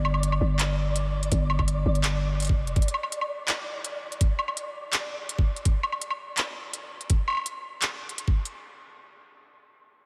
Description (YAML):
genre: half-time drum and bass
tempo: 166 BPM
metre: 4/4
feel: half-time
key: unclear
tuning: A4 = 440 Hz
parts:
  - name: growling 808-style bass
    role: bass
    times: 0.0-2.7 s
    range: F1 to G1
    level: -28 LUFS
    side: equal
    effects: none
  - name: organic electronic drum kit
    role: drums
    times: 0.0-8.5 s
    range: handclaps, hi-hat, woodblock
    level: -32 LUFS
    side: equal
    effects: none
  - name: flickering grainy texture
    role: texture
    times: 0.0-5.7 s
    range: D5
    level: -39 LUFS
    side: equal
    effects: built-in reverb, ensemble chorus
  - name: electronic kick drum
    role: drums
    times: 1.3-8.3 s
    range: none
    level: -26 LUFS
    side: equal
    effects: none
room: moderate cathedral reverb, RT60 6.2 s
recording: dreamy mix soaked in reverb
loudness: -27 LUFS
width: mono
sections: 0.0-8.5 A section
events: none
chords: 0.0 G5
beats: 0.23 0.59 0.95 | 1.32 1.68 2.04 2.40 | 2.76 3.12 3.48 3.85 | 4.21 4.57 4.93 5.29 | 5.65 6.01 6.38 6.74 | 7.10 7.46 7.82 8.18